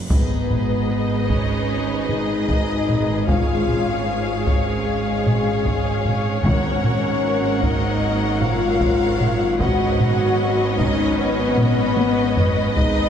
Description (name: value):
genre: cinematic, epic orchestral film score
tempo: 76 BPM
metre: 4/4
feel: straight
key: G# dorian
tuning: A4 = 440 Hz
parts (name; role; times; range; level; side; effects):
- cymbal swell and impact; sound effects; 0.0-3.3 s; none; -31 LUFS; equal; none
- rich symphonic violin section; melody; 0.1-13.1 s; D#5 to F#5; -29 LUFS; left 4 dB; none
- warm symphonic violin section; second line; 0.1-13.1 s; G#4 to F#5; -29 LUFS; left 4 dB; none
- clear symphonic viola section; accompaniment; 0.1-13.1 s; G#4 to D#5; -29 LUFS; equal; none
- dark French horn section; sustained chords; 0.1-13.1 s; G#3 to F#4; -23 LUFS; left 3 dB; none
- rich symphonic string section; sustained chords; 0.1-13.1 s; F#3 to D#5; -29 LUFS; equal; none
- rich studio cello section; bass; 0.1-13.1 s; G#2; -26 LUFS; right 1 dB; none
- rich symphonic double bass section; bass; 0.1-13.1 s; G#1; -27 LUFS; right 5 dB; none
- taiko ensemble; drums; 0.1-13.1 s; none; -22 LUFS; equal; none
- timpani; percussion; 3.3-7.6 s; G#2; -27 LUFS; left 1 dB; none
room: moderate scoring stage reverb, RT60 1.6 s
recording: dark, warm production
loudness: -17 LUFS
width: side -8 dB against mid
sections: 0.1-13.1 A section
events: impact 0.1-3.3; drum fill 11.6-12.8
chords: 0.1 G#m; 3.3 C#/G#; 6.4 F#/G#; 9.6 Badd9/G#